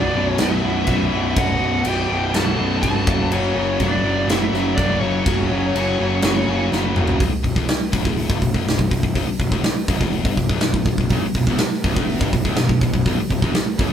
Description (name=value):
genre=heavy metal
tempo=123 BPM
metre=4/4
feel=straight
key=B minor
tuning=A4 = 441 Hz
part: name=high-gain lead guitar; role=melody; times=0.0-6.7 s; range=C#5 to A5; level=-25 LUFS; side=left 1 dB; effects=distortion
part: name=high-gain lead guitar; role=second line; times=0.0-6.7 s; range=C#4 to A4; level=-30 LUFS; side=right 1 dB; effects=distortion
part: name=high-gain distorted guitar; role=riff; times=0.0-13.9 s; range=B1 to F#3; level=-25 LUFS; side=left 7 dB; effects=distortion
part: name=high-gain distorted guitar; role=riff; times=0.0-7.2, 11.1-13.9 s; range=B1 to F#3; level=-24 LUFS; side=right 3 dB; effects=distortion
part: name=fuzz picked electric bass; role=bass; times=0.0-13.9 s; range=B0 to G1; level=-24 LUFS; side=equal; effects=overdrive
part: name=big rock drum kit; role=drums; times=0.4-13.9 s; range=crash cymbal, hi-hat, kick drum, snare drum, toms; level=-21 LUFS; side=right 1 dB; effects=none
room=light reverb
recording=band playing live in one room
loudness=-17 LUFS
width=side -9 dB against mid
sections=0.0-7.2 A section; 7.2-13.9 B section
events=half time 0.0-7.2; drum fill 6.7-7.2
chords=0.0 Bm; 3.1 F#5; 7.2 B5